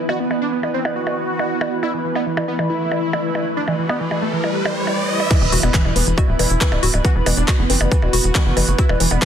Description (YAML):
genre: psychedelic trance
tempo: 138 BPM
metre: 4/4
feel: straight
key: unclear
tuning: A4 = 440 Hz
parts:
  - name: pulsing gated texture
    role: sustained chords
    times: 0.0-9.2 s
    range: E3 to B3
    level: -27 LUFS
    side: right 2 dB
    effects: chorus, built-in reverb, sidechain pumping
  - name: warbly tape-like pad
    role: texture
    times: 0.0-9.2 s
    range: E4 to B5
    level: -26 LUFS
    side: equal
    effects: chorus, built-in reverb, phaser, sidechain pumping
  - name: wide unison lead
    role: melody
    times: 0.1-9.2 s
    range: E3 to F#4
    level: -24 LUFS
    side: equal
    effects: phaser, cassette tape, sidechain pumping, digital delay
  - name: techno drum kit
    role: drums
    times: 0.1-9.2 s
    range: crash cymbal, handclaps, hi-hat, percussion blips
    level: -23 LUFS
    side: right 2 dB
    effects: low-pass filter on perc, low-pass filter on hats, low-pass filter on cymbals, low-pass filter on snare, low-pass filter on room
  - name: riser and impact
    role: sound effects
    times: 3.4-7.0 s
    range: none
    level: -26 LUFS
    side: right 1 dB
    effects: none
  - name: woody wave-folded pluck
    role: riff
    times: 5.3-9.2 s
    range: E3 to F#4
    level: -25 LUFS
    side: left 3 dB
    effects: chorus, auto-pan, sidechain pumping, digital delay
  - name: electronic kick drum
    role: drums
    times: 5.3-9.2 s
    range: none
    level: -16 LUFS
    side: equal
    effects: overdrive
  - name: tight sequencer bass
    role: bass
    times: 5.4-9.2 s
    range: D1 to F#1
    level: -19 LUFS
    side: equal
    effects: none
room: light reverb, digital ambience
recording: dense, heavily limited modern master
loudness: -16 LUFS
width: side -9 dB against mid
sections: 0.0-5.3 A section; 5.3-9.2 B section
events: filter sweep on synth texture 0.0-5.3; riser 3.4-5.3; drop 5.3-9.2; impact 5.3-7.0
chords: 0.0 E5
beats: | 0.09 0.52 0.96 1.39 | 1.83 2.26 2.70 3.13 | 3.57 4.00 4.44 4.87 | 5.31 5.74 6.18 6.61 | 7.05 7.48 7.92 8.35 | 8.79 9.22